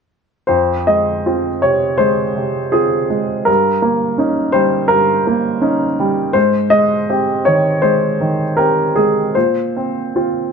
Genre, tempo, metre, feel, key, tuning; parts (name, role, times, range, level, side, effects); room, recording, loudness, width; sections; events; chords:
neoclassical minimalist piano; 81 BPM; 4/4; uneven beats, rubato; F minor; A4 = 441 Hz
warm upright piano; solo; 0.5-10.5 s; F2 to Eb5; -13 LUFS; equal; slapback echo
light reverb; -13 LUFS; side -6 dB against mid
0.5-10.5 A section
0.5 Fm7; 3.5 Eb7/G; 6.4 Abmaj7; 9.3 Bbsus2